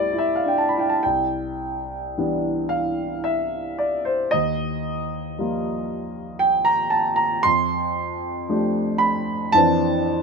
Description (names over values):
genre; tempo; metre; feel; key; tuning
classical, impressionist solo piano; 48-58 BPM; 3/4; rubato; C major; A4 = 440 Hz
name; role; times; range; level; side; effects
warm grand piano; solo; 0.0-10.2 s; C2 to C6; -20 LUFS; right 1 dB; none
room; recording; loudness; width
light reverb; minimal, uncompressed stereo recording; -20 LUFS; side -4 dB against mid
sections
0.0-1.0 A section; 1.0-10.2 B section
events
none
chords
0.0 Cmaj7; 1.0 Cmaj9; 4.3 Ebadd9; 7.4 F69; 9.5 Cmaj9/F